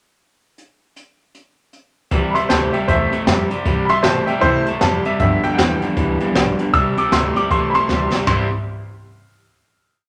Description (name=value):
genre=rockabilly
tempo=156 BPM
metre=4/4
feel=swing 62% on 8ths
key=C major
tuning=A4 = 440 Hz
part: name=jazz brush drum kit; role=drums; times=0.6-8.4 s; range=hi-hat, kick drum, ride cymbal, snare drum, toms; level=-23 LUFS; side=equal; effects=none
part: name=picked steel-string acoustic guitar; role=accompaniment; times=2.1-8.5 s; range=G2 to G4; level=-27 LUFS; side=equal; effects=none
part: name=electric guitar at the edge of break-up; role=riff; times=2.1-8.5 s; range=G2 to E4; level=-24 LUFS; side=equal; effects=warbly pitch drift
part: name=upright bass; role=bass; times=2.1-8.5 s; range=B1 to C3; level=-27 LUFS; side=equal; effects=none
part: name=clear upright piano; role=melody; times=2.3-8.5 s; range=E4 to E6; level=-21 LUFS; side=equal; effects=none
room=moderate large studio reverb, RT60 1.3 s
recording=none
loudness=-17 LUFS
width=mono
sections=0.6-2.1 pickup bar; 2.1-8.3 A section; 8.3-9.8 final chord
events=drum fill 7.9-8.3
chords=0.6 N.C.; 2.1 C; 5.2 G7; 6.7 C